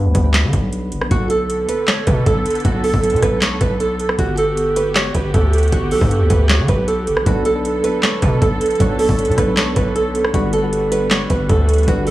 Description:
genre	hip hop, trap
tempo	156 BPM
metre	4/4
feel	half-time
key	B minor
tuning	A4 = 439 Hz
part	soft electric-piano-like synth keys	accompaniment	0.0-1.1, 7.3-12.1 s	F#3 to C#5	-23 LUFS	left 1 dB	chorus
part	distorted 808-style bass	bass	0.0-12.1 s	F#1 to D3	-19 LUFS	equal	distortion
part	trap drum kit	drums	0.1-12.1 s	handclaps, hi-hat, kick drum, rim click, snare drum	-19 LUFS	equal	none
part	nylon-string guitar	melody	1.1-12.1 s	F#4 to C#5	-19 LUFS	right 2 dB	none
part	dark symphonic string section	sustained chords	1.1-12.1 s	D3 to A4	-25 LUFS	right 3 dB	none
room	little or no reverb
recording	dry, gritty hardware recording, small room reverb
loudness	-14 LUFS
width	side -15 dB against mid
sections	0.0-1.1 A section; 1.1-12.1 B section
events	none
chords	0.0 Gmaj7; 1.1 Bm7; 4.2 Gmaj7; 7.3 Bm7; 10.3 Gmaj7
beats	0.34 0.72 | 1.11 1.49 1.88 2.26 | 2.65 3.03 3.42 3.80 | 4.19 4.57 4.96 5.34 | 5.72 6.11 6.49 6.88 | 7.26 7.65 8.03 8.42 | 8.80 9.19 9.57 9.96 | 10.34 10.72 11.11 11.49 | 11.88

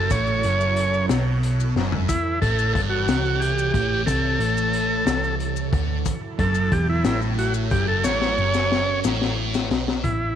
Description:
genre	psychedelic rock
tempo	60 BPM (dotted quarters)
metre	6/8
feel	straight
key	unclear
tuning	A4 = 445 Hz
part	combo organ	melody	0.0-10.4 s	E4 to C#5	-24 LUFS	right 1 dB	tape echo
part	string machine, violas	sustained chords	0.0-10.0 s	E3 to C#5	-35 LUFS	right 10 dB	ensemble chorus
part	thick fuzz guitar	riff	0.0-10.0 s	E2 to D3	-25 LUFS	right 1 dB	distortion, phaser
part	vintage muted picked electric bass	bass	0.0-10.4 s	E1 to D2	-26 LUFS	equal	none
part	crunchy breakbeat drum kit	drums	0.1-10.2 s	hi-hat, kick drum, snare drum, toms	-26 LUFS	left 4 dB	none
part	maracas	percussion	0.1-9.8 s	none	-37 LUFS	left 14 dB	none
room	light reverb, small room reverb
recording	1960s-style stereo with parts hard left and right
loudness	-19 LUFS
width	side -9 dB against mid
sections	0.0-10.0 A section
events	drum fill 1.8-2.1, 8.0-10.0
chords	0.0 F#m7; 2.1 A; 6.1 F#m7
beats	| 0.11 1.10 | 2.09 3.08 | 4.07 5.07 | 6.06 7.05 | 8.05 9.04 | 10.04

